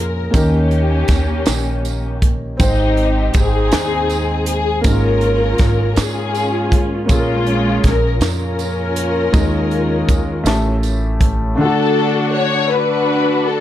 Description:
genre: slow gospel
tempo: 53 BPM (dotted quarters)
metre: 6/8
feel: straight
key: Ab major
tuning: A4 = 440 Hz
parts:
  - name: warm studio string section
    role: melody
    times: 0.0-13.6 s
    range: Ab3 to C#5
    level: -18 LUFS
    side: left 2 dB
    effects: slapback echo
  - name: warm concert grand piano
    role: accompaniment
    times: 0.0-13.6 s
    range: Ab2 to A5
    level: -21 LUFS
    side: left 1 dB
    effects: none
  - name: upright bass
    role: bass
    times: 0.0-11.5 s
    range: Ab1 to Ab2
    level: -19 LUFS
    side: equal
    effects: none
  - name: crisp fusion drum kit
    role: drums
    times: 0.3-11.4 s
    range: hi-hat, kick drum, snare drum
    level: -17 LUFS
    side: equal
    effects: none
  - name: tambourine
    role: percussion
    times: 0.3-11.2 s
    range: none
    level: -32 LUFS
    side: right 14 dB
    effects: none
room: little or no reverb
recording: none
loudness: -14 LUFS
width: side -12 dB against mid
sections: 0.0-11.6 A section; 11.6-13.6 B section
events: none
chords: 0.3 Eb7; 2.6 Abmaj7; 4.8 Db6/Ab; 7.1 Bbm7; 9.3 Ebsus4; 10.5 A7; 11.6 D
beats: | 0.34 1.47 | 2.59 3.72 | 4.84 5.97 | 7.09 8.22 | 9.34 10.46 | 11.59 12.71

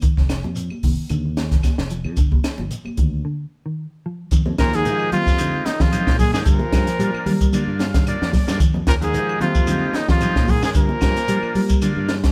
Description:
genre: afrobeat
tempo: 112 BPM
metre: 4/4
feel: swing 54% on 16ths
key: F dorian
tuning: A4 = 439 Hz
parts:
  - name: mellow electric guitar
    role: arpeggios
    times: 0.0-12.0 s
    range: D3 to F3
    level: -30 LUFS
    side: equal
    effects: none
  - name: fingered electric bass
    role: bass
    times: 0.0-12.3 s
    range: F1 to G3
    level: -26 LUFS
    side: equal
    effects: none
  - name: compact cocktail drum kit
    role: drums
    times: 0.0-12.3 s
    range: hi-hat, kick drum, snare drum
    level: -21 LUFS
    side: equal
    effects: none
  - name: shekere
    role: percussion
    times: 0.0-12.3 s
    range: none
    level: -36 LUFS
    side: equal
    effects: none
  - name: claves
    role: percussion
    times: 0.3-12.0 s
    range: none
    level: -44 LUFS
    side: equal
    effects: none
  - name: congas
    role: percussion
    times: 0.4-12.2 s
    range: none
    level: -31 LUFS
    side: equal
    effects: none
  - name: clear trumpet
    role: melody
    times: 4.6-11.8 s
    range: Eb4 to Bb4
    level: -25 LUFS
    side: equal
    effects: none
  - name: trombone with bucket mute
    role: second line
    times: 4.6-11.8 s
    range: Bb2 to F3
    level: -33 LUFS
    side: equal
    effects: none
  - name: warm baritone saxophone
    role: second line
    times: 4.6-11.8 s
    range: Eb2 to Bb2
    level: -33 LUFS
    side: equal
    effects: none
  - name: combo organ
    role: accompaniment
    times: 4.8-12.2 s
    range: Ab3 to F5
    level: -31 LUFS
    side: equal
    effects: none
room: light reverb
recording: band playing live in one room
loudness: -19 LUFS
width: mono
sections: 0.0-4.3 A section; 4.3-12.3 B section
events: break 3.2-4.3; transistor combo organ fill 7.5-8.6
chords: 0.0 Ebsus2/F; 2.2 G5; 4.3 Fm7; 6.5 Gm7; 8.6 Fm7; 10.8 Gm7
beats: | 0.03 0.57 1.11 1.64 | 2.18 2.71 3.25 3.79 | 4.32 4.86 5.39 5.93 | 6.46 7.00 7.53 8.07 | 8.60 9.14 9.68 10.21 | 10.75 11.29 11.82

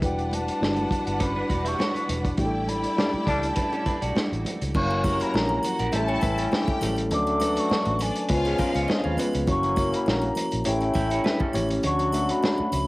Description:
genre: lush 1970s-style soul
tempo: 102 BPM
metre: 4/4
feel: swing 54% on 16ths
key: unclear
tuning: A4 = 440 Hz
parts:
  - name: mellow hollow jazz flute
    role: melody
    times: 0.0-12.9 s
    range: G5 to D6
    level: -29 LUFS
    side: equal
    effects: cassette tape
  - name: bright studio string section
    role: second line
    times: 0.0-9.1 s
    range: D4 to A#5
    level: -34 LUFS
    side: left 1 dB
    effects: cassette tape
  - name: mellow tine electric piano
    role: accompaniment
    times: 0.0-12.9 s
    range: F#3 to E5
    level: -28 LUFS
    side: equal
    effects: cassette tape
  - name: vintage muted fingered electric bass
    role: bass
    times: 0.0-12.9 s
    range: E1 to Eb2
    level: -30 LUFS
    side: equal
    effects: none
  - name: vintage drum kit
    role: drums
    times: 0.0-12.9 s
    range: crash cymbal, hi-hat, kick drum, snare drum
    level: -28 LUFS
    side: equal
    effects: none
  - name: congas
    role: percussion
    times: 0.0-12.9 s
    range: none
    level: -38 LUFS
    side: right 2 dB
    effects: none
  - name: electric guitar through a small old amp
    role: riff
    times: 1.2-11.8 s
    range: B3 to F#5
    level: -33 LUFS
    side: right 2 dB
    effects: cassette tape
  - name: brilliant trombone section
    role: stabs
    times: 3.0-12.7 s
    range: E#3 to F#4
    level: -30 LUFS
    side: left 2 dB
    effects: cassette tape
  - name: triangle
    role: percussion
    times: 4.7-12.9 s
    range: none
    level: -43 LUFS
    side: right 2 dB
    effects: none
room: light reverb, small room ambience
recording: home recording on cassette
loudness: -22 LUFS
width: side -21 dB against mid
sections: 0.0-4.8 A section; 4.8-12.9 B section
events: band accent 2.4-4.8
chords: 0.0 Em9; 2.4 A7sus4; 4.8 F#7; 5.9 A7; 7.1 Dmaj7; 8.3 C#7; 9.5 F#7; 10.7 A7; 11.8 Dmaj7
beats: | 0.02 0.61 1.20 1.79 | 2.39 2.98 3.57 4.16 | 4.75 5.34 5.93 6.52 | 7.11 7.70 8.29 8.88 | 9.47 10.06 10.65 11.24 | 11.84 12.43

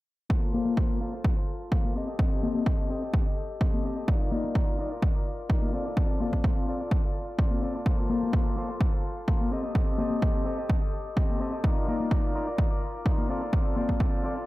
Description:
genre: filtered disco house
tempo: 127 BPM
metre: 4/4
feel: straight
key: unclear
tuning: A4 = 442 Hz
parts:
  - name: clean electric guitar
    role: riff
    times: 0.3-14.5 s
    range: Bb3 to Eb5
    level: -32 LUFS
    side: left 1 dB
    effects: spring reverb, sidechain pumping, low-pass filter, dub echo
  - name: electronic kick drum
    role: drums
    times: 0.3-14.1 s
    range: none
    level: -26 LUFS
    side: equal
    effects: overdrive
  - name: egg shaker and congas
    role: percussion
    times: 0.3-14.5 s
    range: none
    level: -33 LUFS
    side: left 4 dB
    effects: sidechain pumping on perc, low-pass filter on perc, dub echo
room: digital ambience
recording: echo-heavy mix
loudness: -25 LUFS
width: side -18 dB against mid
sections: 0.3-14.5 A section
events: filter sweep 0.3-14.5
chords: 0.3 Fadd11/Bb; 2.0 Cm6; 4.1 Bbadd11/Eb; 5.7 F6/C; 7.9 Fadd11/Bb; 9.5 Cm6; 11.6 Bbadd11/Eb; 13.3 F6/C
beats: | 0.30 0.77 1.25 1.72 | 2.19 2.66 3.14 3.61 | 4.08 4.55 5.03 5.50 | 5.97 6.44 6.92 7.39 | 7.86 8.33 8.81 9.28 | 9.75 10.22 10.70 11.17 | 11.64 12.11 12.59 13.06 | 13.53 14.00

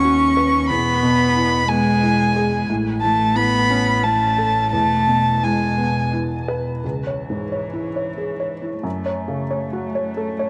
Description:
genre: neoclassical piano and strings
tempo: 90 BPM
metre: 3/4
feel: rubato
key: C# minor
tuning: A4 = 440 Hz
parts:
  - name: dark violin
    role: melody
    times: 0.0-6.1 s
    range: G#5 to C#6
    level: -22 LUFS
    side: equal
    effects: tape echo
  - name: warm cello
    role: second line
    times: 0.0-10.5 s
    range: E3 to C#4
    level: -25 LUFS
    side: equal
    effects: none
  - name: felt-muted upright piano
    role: accompaniment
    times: 0.0-10.5 s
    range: C#2 to C#5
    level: -27 LUFS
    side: equal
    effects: none
  - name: warm double bass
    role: bass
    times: 0.0-6.8 s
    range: E1 to D#2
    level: -27 LUFS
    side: equal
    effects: none
room: moderate spring reverb, RT60 2.4 s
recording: none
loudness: -19 LUFS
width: mono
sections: 0.0-6.8 A section; 6.8-10.5 B section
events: none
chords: 0.0 B/D#; 0.7 E; 2.7 A; 4.7 E; 6.8 C#m; 8.8 F#m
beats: 0.04 | 0.70 1.36 2.02 | 2.69 3.36 4.04 | 4.73 5.43 6.14 | 6.83 7.51 8.18 | 8.85 9.51 10.18

